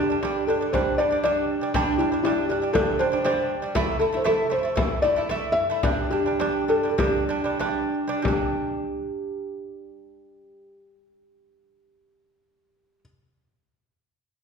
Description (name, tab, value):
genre	mongolian traditional, Mongolian folk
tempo	89-119 BPM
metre	4/4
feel	straight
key	G zhi mode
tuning	A4 = 442 Hz
part	felt-muted upright piano	melody	0.0-13.0 s	E4 to E5	-25 LUFS	left 2 dB	none
part	lute	arpeggios	0.0-13.0 s	G3 to E4	-26 LUFS	right 4 dB	none
part	frame drum	percussion	0.1-8.6 s	none	-29 LUFS	left 2 dB	none
room	wet recital hall reverb, RT60 1.5 s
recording	recorded in a church or concert hall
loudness	-21 LUFS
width	side -6 dB against mid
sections	0.0-8.2 A section; 8.2-13.6 B section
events	slowing down 3.8-8.2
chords	0.0 G5; 3.8 A5; 5.8 G5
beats	0.22 0.73 1.23 | 1.74 2.24 2.75 3.25 | 3.75 4.26 4.77 5.30 | 5.84 6.40 6.98 7.59 | 8.24 8.92 9.59 10.26 | 10.93 11.61 12.28 12.95